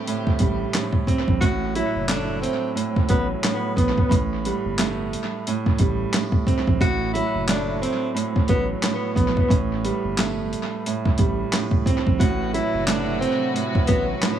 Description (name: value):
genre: hip hop, boom-bap hip-hop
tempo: 89 BPM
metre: 4/4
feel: swing 58% on 16ths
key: A dorian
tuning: A4 = 440 Hz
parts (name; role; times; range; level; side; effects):
- warm grand piano; accompaniment; 0.0-14.4 s; A2 to C4; -24 LUFS; right 4 dB; high-pass filter, low-pass filter
- warm studio string section; sustained chords; 0.0-1.4, 12.2-14.4 s; C3 to B4; -31 LUFS; left 2 dB; high-pass filter, low-pass filter
- boom bap sampler-style drum kit; drums; 0.1-14.4 s; handclaps, hi-hat, kick drum, snare drum; -23 LUFS; equal; analog delay
- soft dub sub bass; bass; 0.4-14.1 s; F#1 to Bb1; -28 LUFS; equal; none
- breathy tenor saxophone; melody; 1.4-14.1 s; B3 to F#4; -26 LUFS; equal; high-pass filter, low-pass filter, analog delay
room: light reverb, small room ambience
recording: echo-heavy mix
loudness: -20 LUFS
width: side -10 dB against mid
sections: 0.0-1.4 A section; 1.4-14.4 B section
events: none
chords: 0.0 D7sus4; 1.4 Asus2; 4.1 Gsus2; 6.8 Asus2; 9.5 Gsus2; 12.2 Am69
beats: 0.07 0.74 | 1.41 2.09 2.76 3.44 | 4.11 4.79 5.46 6.13 | 6.81 7.48 8.15 8.83 | 9.50 10.18 10.85 11.53 | 12.20 12.88 13.55 14.22